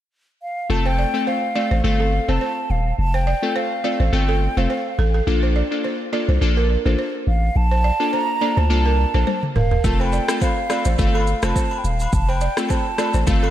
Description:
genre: afrobeats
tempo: 105 BPM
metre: 4/4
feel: swing 55% on 16ths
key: unclear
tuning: A4 = 441 Hz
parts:
  - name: mellow hollow silver concert flute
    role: melody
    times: 0.4-13.5 s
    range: F5 to Bb5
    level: -25 LUFS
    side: right 1 dB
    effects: diffuse ambient delay
  - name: glassy digital keys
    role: accompaniment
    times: 0.7-13.5 s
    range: A3 to A4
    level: -24 LUFS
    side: left 3 dB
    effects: chorus
  - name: punchy sub bass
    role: bass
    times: 0.7-13.5 s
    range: Eb1 to D2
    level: -19 LUFS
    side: equal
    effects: none
  - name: balafon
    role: riff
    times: 0.9-13.5 s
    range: A4 to D5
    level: -27 LUFS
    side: right 6 dB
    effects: diffuse ambient delay
  - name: afro-pop drum kit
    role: drums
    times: 9.3-13.4 s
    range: kick drum, rim click, shaker, toms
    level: -22 LUFS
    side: equal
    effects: none
  - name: agogo bells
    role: percussion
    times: 10.0-13.5 s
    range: none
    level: -30 LUFS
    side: left 3 dB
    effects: none
room: light reverb, studio reverb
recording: none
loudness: -17 LUFS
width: side -12 dB against mid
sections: 0.7-13.5 A section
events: drum fill 9.3-9.8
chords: 0.0 N.C.; 0.7 F; 5.3 Bbmaj7; 9.8 F

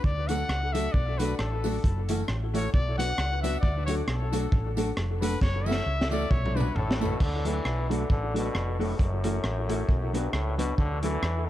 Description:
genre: ska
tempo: 134 BPM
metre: 4/4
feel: swing 56% on 8ths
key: D major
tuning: A4 = 440 Hz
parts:
  - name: breathy trumpet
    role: melody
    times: 0.0-7.2 s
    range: A4 to F#5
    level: -33 LUFS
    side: left 2 dB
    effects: tape echo
  - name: hollow-body short-scale fingered electric bass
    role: bass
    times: 0.0-11.5 s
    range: F1 to E2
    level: -29 LUFS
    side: equal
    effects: none
  - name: crunchy breakbeat drum kit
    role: drums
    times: 0.0-11.3 s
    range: crash cymbal, hi-hat, kick drum, rim click, snare drum, toms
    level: -28 LUFS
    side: equal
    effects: none
  - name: mellow electric guitar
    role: accompaniment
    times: 0.3-11.2 s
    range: E3 to A4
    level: -35 LUFS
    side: right 4 dB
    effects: spring reverb
  - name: warm upright piano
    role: stabs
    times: 0.3-11.1 s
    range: C#4 to B4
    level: -34 LUFS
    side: left 5 dB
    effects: tape echo
  - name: tambourine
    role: percussion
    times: 0.3-7.1 s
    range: none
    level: -46 LUFS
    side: right 6 dB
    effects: none
  - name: brilliant trombone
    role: melody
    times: 6.8-11.5 s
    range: F#2 to E3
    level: -33 LUFS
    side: left 2 dB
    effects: tape echo
room: light reverb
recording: dark, warm production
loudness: -25 LUFS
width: side -13 dB against mid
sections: 0.0-7.2 A section; 7.2-11.5 B section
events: trumpet solo 0.0-7.2; drum fill 5.4-7.2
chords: 0.0 D; 1.8 F#m7; 2.7 Bm; 3.6 D; 5.4 F#m7; 6.3 Bm; 6.8 A; 7.2 D; 9.0 F#m7; 9.9 Bm; 10.8 D

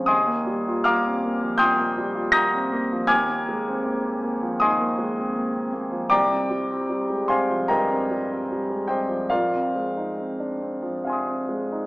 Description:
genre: classical, impressionist solo piano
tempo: 78 BPM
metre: 4/4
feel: uneven beats, rubato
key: F dorian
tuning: A4 = 444 Hz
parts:
  - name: clear concert grand piano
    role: solo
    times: 0.0-11.9 s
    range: C2 to Bb6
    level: -21 LUFS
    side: equal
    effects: none
room: wet recital hall reverb, RT60 1.9 s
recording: small speaker sound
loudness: -21 LUFS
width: side -21 dB against mid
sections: 0.0-11.9 A section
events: none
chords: 0.1 Ebadd9; 3.1 Ab69/Eb; 6.1 C7sus4; 9.3 Fm7

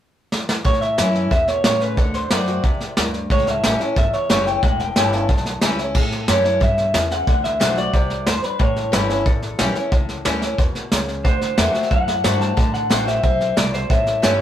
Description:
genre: rockabilly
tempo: 181 BPM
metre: 4/4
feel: straight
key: A mixolydian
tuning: A4 = 441 Hz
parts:
  - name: vintage brush drum kit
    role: drums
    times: 0.3-14.3 s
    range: crash cymbal, hi-hat, kick drum, snare drum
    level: -20 LUFS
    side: equal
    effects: none
  - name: picked old ladder-braced acoustic guitar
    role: accompaniment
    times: 0.6-14.4 s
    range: E2 to F#4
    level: -25 LUFS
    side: left 3 dB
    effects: none
  - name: electric guitar through a small old amp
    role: melody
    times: 0.7-14.4 s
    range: A4 to A5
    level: -21 LUFS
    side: equal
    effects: spring reverb
  - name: upright bass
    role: bass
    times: 0.7-14.4 s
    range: E1 to A2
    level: -25 LUFS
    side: right 1 dB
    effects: none
room: moderate studio reverb, RT60 0.5 s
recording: rough rehearsal-room recording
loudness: -16 LUFS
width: side -11 dB against mid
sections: 0.7-6.0 A section; 6.0-14.4 B section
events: drum fill 0.3-0.7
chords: 0.0 N.C.; 0.7 A; 2.0 D7; 3.3 A7; 7.3 D7; 8.6 A7; 11.3 D7; 13.9 A7

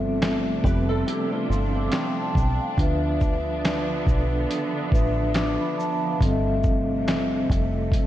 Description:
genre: lo-fi hip hop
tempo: 70 BPM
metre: 4/4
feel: swing 60% on 16ths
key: unclear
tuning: A4 = 440 Hz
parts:
  - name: vibraphone with soft mallets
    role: accompaniment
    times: 0.0-8.1 s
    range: G3 to D6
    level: -26 LUFS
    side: left 1 dB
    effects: low-pass filter
  - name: warm studio string section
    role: sustained chords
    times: 0.0-8.1 s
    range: C3 to D4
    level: -29 LUFS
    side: right 2 dB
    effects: low-pass filter
  - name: deep dub fingered electric bass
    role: bass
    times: 0.0-7.9 s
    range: F1 to D2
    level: -26 LUFS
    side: equal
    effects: none
  - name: lo-fi sampler-style drum kit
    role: drums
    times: 0.2-8.1 s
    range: handclaps, hi-hat, kick drum, shaker, snare drum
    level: -24 LUFS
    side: equal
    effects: none
  - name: flamenco guitar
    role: second line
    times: 0.6-2.7 s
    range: C4 to B4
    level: -33 LUFS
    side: right 2 dB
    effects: ensemble chorus, low-pass filter, diffuse ambient delay
room: moderate lush hall reverb, RT60 2.4 s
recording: dreamy mix soaked in reverb, cassette tape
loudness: -21 LUFS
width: side -13 dB against mid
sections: 0.0-8.1 A section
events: none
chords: 0.0 G13sus4; 2.8 Dm69; 6.2 G13sus4

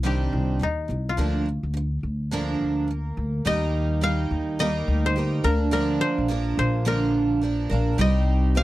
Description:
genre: acoustic pop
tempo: 106 BPM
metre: 4/4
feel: swing 60% on 16ths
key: Eb major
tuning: A4 = 437 Hz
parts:
  - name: koto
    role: melody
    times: 0.0-8.6 s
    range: Eb4 to F5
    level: -28 LUFS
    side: left 3 dB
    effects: none
  - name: picked twelve-string acoustic guitar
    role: accompaniment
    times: 0.0-8.6 s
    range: C3 to Bb4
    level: -26 LUFS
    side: right 3 dB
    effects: none
  - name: upright bass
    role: bass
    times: 0.0-8.6 s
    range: Bb1 to Eb2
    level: -24 LUFS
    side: equal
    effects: none
room: little or no reverb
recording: dry, close 1970s-style studio recording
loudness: -21 LUFS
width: side -16 dB against mid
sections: 0.0-3.5 A section; 3.5-8.6 B section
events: none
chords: 0.0 Cmadd9; 1.2 Bb/D; 3.5 Eb; 5.4 Bb; 8.0 Cm

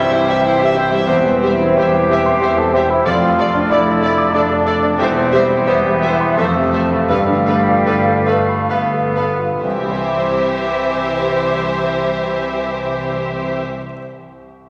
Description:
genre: classical, romantic movement for piano and orchestra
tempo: 61-96 BPM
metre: 3/4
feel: rubato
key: C major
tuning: A4 = 440 Hz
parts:
  - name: clear concert grand piano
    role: melody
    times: 0.0-14.7 s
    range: C2 to D6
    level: -21 LUFS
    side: equal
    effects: none
  - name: warm symphonic violin section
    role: melody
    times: 0.0-13.6 s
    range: D5 to G5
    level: -31 LUFS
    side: equal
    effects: none
  - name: mellow cor anglais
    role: second line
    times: 0.0-13.6 s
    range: E3 to A4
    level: -25 LUFS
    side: equal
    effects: none
  - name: mellow hollow small flute group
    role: second line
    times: 0.0-13.6 s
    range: D5 to F5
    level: -28 LUFS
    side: equal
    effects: none
  - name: rich studio violin section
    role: second line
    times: 0.0-13.6 s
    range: B4 to E5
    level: -27 LUFS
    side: equal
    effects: none
  - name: warm clarinet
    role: second line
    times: 0.0-13.6 s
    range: G4 to C5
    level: -30 LUFS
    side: equal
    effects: none
  - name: clear studio viola section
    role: accompaniment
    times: 0.0-13.6 s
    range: E4 to A4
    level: -29 LUFS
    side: equal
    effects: none
  - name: warm bassoon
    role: accompaniment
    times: 0.0-13.6 s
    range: G3 to A4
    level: -25 LUFS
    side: equal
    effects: none
  - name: dark trombone section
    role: sustained chords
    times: 0.0-13.6 s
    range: D3 to C4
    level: -27 LUFS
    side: equal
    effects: none
  - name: mellow French horn section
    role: sustained chords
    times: 0.0-13.6 s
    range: G4 to F5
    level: -27 LUFS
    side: equal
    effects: none
  - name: warm studio cello section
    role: bass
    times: 0.0-13.6 s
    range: E2 to C3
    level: -32 LUFS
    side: equal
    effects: none
  - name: warm studio double bass section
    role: bass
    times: 0.0-13.6 s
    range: E1 to C2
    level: -31 LUFS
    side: equal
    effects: none
  - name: timpani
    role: percussion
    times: 7.1-13.6 s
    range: none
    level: barely audible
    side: none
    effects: none
room: wet concert hall reverb, RT60 2.4 s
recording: none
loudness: -16 LUFS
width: mono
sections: 0.0-9.6 A section; 9.6-14.7 B section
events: slowing down 4.0-9.6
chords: 0.0 C; 1.1 C/E; 3.1 Dm/F; 5.0 C/E; 6.4 Fmaj7; 7.1 G9; 9.6 C

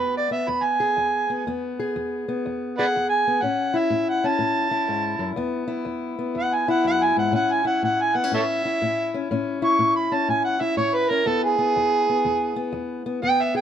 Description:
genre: acoustic country blues, solo or duo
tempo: 122 BPM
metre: 4/4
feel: swing 65% on 8ths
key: E major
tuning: A4 = 443 Hz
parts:
  - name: overdriven harmonica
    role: melody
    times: 0.0-13.6 s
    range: G#4 to C#6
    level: -21 LUFS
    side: right 2 dB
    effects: none
  - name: fingerpicked steel-string acoustic guitar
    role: accompaniment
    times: 0.0-13.6 s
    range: E2 to G#4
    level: -25 LUFS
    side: left 3 dB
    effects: none
room: light reverb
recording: minimal, uncompressed stereo recording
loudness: -20 LUFS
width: side -9 dB against mid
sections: 0.0-13.6 A section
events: harmonica solo 0.0-13.6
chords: 0.0 E; 3.4 A; 5.4 E5; 7.3 A; 11.3 E

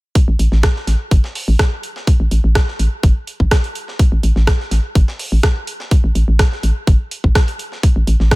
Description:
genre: minimal techno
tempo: 125 BPM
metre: 4/4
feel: straight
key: unclear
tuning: A4 = 442 Hz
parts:
  - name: breakbeat sampler-style drum kit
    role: drums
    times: 0.2-8.4 s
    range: hi-hat, snare drum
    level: -29 LUFS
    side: right 2 dB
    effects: high-pass filter on hats, high-pass filter on snare
  - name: electronic kick drum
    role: drums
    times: 0.2-8.4 s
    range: none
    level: -13 LUFS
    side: equal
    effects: none
  - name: hollow knocking FM bass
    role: bass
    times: 0.3-8.4 s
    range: G1 to A1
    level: -14 LUFS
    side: equal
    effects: tube saturation, sidechain pumping
  - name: electronic rim click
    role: drums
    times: 0.6-8.4 s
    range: none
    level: -22 LUFS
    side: right 2 dB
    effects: none
room: little or no reverb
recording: none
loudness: -13 LUFS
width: side -22 dB against mid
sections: 0.2-8.4 A section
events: none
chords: none

